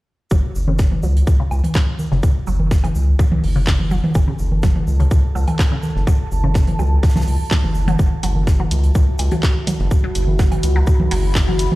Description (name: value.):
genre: minimal techno.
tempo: 125 BPM.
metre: 4/4.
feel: straight.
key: F# minor.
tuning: A4 = 440 Hz.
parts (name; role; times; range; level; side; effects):
resonant blip pluck; riff; 0.3-11.5 s; C#3 to F#3; -26 LUFS; equal; phaser, sidechain pumping, dub echo.
round analog bass; bass; 0.3-11.7 s; F#1 to C#2; -18 LUFS; equal; tube saturation, sidechain pumping.
electronic kick drum; drums; 0.3-11.5 s; none; -15 LUFS; equal; none.
modern studio drum kit; drums; 0.3-11.7 s; hi-hat, shaker, snare drum; -37 LUFS; right 1 dB; high-pass filter on hats, high-pass filter on snare, high-pass filter on perc, high-pass filter on room.
deep dark ambient pad; texture; 2.4-11.8 s; F#4 to B5; -28 LUFS; right 1 dB; chorus, built-in reverb, sidechain pumping.
electronic congas, toms and woodblock; percussion; 0.7-11.8 s; none; -23 LUFS; right 1 dB; overdrive, dub echo.
garage drum kit; drums; 1.8-11.7 s; handclaps, hi-hat; -26 LUFS; equal; none.
room: little or no reverb.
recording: played on a big sound system in a bare room, large studio reverb.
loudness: -15 LUFS.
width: side -18 dB against mid.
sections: 0.3-11.8 A section.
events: none.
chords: 0.3 F#m7.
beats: | 0.31 0.79 1.27 1.75 | 2.23 2.71 3.19 3.67 | 4.15 4.63 5.11 5.59 | 6.07 6.55 7.03 7.51 | 7.99 8.47 8.95 9.43 | 9.91 10.39 10.87 11.35.